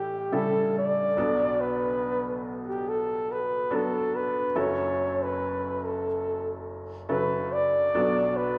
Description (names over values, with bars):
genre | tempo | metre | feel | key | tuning
acoustic folk-pop ballad | 71 BPM | 4/4 | straight | B minor | A4 = 440 Hz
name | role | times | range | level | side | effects
breathy flugelhorn | melody | 0.0-8.6 s | G4 to D5 | -29 LUFS | equal | none
felt-muted upright piano | accompaniment | 0.0-8.6 s | F#1 to A4 | -33 LUFS | equal | none
room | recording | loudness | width
wet recital hall reverb, RT60 1.7 s | recorded in a church or concert hall | -27 LUFS | mono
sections
0.0-8.6 A section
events
none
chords
0.0 A7; 1.2 Bm7; 4.6 F#m7; 8.0 Bm7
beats
0.33 | 1.18 2.02 2.87 3.71 | 4.56 5.41 6.25 7.10 | 7.95